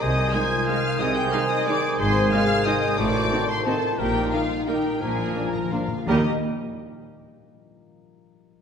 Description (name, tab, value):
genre	classical, orchestral ballroom waltz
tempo	161-194 BPM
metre	3/4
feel	rubato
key	Eb major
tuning	A4 = 436 Hz
part	rich symphonic violin section	melody	0.0-6.3 s	Eb5 to Ab6	-30 LUFS	left 4 dB	none
part	mellow hollow silver concert flute	second line	0.0-6.3 s	Ab5 to Bb5	-33 LUFS	left 1 dB	none
part	warm clarinet	second line	0.0-6.2 s	D4 to Ab4	-31 LUFS	equal	none
part	warm cor anglais	second line	0.0-6.2 s	Bb4 to C5	-33 LUFS	right 3 dB	none
part	warm symphonic violin section	second line	0.0-6.3 s	F4 to Ab5	-30 LUFS	left 4 dB	none
part	dark bassoon	accompaniment	0.0-6.2 s	Eb3 to G3	-31 LUFS	right 3 dB	none
part	dark French horn section	sustained chords	0.0-6.2 s	Bb3 to C5	-32 LUFS	left 1 dB	none
part	concert harp	arpeggios	0.0-7.2 s	Ab2 to Eb5	-31 LUFS	left 6 dB	none
part	rich studio cello section	bass	0.0-6.3 s	Ab2 to Eb3	-30 LUFS	right 3 dB	none
part	rich symphonic double bass section	bass	0.0-6.3 s	Ab1 to Eb2	-30 LUFS	right 2 dB	none
part	rich symphonic viola section	accompaniment	0.3-6.3 s	Ab3 to G4	-31 LUFS	right 2 dB	none
part	bright trombone section	sustained chords	0.3-6.2 s	Bb2 to Eb4	-36 LUFS	right 3 dB	none
part	timpani	percussion	5.0-6.2 s	Bb2 to Eb3	-33 LUFS	right 1 dB	none
room	wet concert hall reverb, RT60 2.0 s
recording	minimal, uncompressed stereo recording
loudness	-20 LUFS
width	side -7 dB against mid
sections	0.0-6.1 A section; 6.1-7.1 B section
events	timpani fill 5.0-6.1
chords	0.0 Ab/C; 2.0 Ab; 3.0 Adim7; 4.0 Eb/Bb; 5.0 Bb7; 6.1 Eb